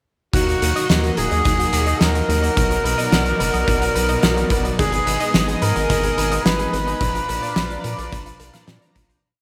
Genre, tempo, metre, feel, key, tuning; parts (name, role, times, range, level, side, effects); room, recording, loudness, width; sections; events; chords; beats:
synthwave; 108 BPM; 4/4; straight; Eb harmonic minor; A4 = 440 Hz
warm tenor saxophone; melody; 0.3-9.1 s; Gb4 to Cb5; -25 LUFS; equal; delay
soft synth bell; second line; 0.3-9.1 s; Gb4 to Cb5; -34 LUFS; equal
chorused pulse-width pad; sustained chords; 0.3-9.2 s; B3 to Eb6; -32 LUFS; equal; sidechain pumping
analog pluck; arpeggios; 0.3-9.2 s; D4 to C6; -33 LUFS; equal
electric guitar at the edge of break-up; riff; 0.3-9.2 s; Bb2 to Ab4; -36 LUFS; equal
analog synth brass; stabs; 0.3-9.2 s; F3 to Bb5; -30 LUFS; equal; chorus
round analog bass; bass; 0.3-9.2 s; Eb1 to Bb2; -26 LUFS; equal; sidechain pumping
kick drum; drums; 0.3-9.1 s; -26 LUFS; equal
oversized low-tuned drum kit; drums; 0.3-9.2 s; hi-hat, snare drum; -25 LUFS; equal; gated reverb
moderate lush hall reverb, RT60 2.3 s; bright 1980s-style digital production; -19 LUFS; mono
0.3-9.2 verse
fade-out 6.3-9.2
0.3 Ebm; 2.6 B; 4.8 Abm; 7.0 Bb
| 0.34 0.90 1.45 2.01 | 2.56 3.12 3.67 4.23 | 4.79 5.34 5.90 6.45 | 7.01 7.56 8.12 8.68